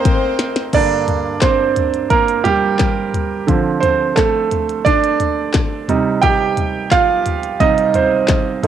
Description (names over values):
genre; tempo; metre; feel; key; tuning
piano-driven pop; 87 BPM; 4/4; straight; G minor; A4 = 442 Hz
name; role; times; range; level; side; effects
warm studio violin section; second line; 0.0-0.7 s; C4 to C5; -22 LUFS; left 3 dB; analog delay
bright concert grand piano; accompaniment; 0.0-8.7 s; G2 to G5; -15 LUFS; right 6 dB; none
minimal click drum kit; drums; 0.1-8.7 s; crash cymbal, handclaps, hi-hat, kick drum, snare drum, toms; -18 LUFS; left 3 dB; cassette tape
room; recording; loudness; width
light reverb, digital ambience; home recording on cassette; -13 LUFS; side -9 dB against mid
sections
0.7-8.7 A section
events
drum fill 0.0-0.7; grand piano solo 0.7-8.7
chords
0.0 F7sus4; 0.7 Gm; 3.5 Dm7; 5.9 Cm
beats
0.05 | 0.74 1.42 2.11 2.80 | 3.48 4.17 4.86 5.55 | 6.23 6.92 7.61 8.29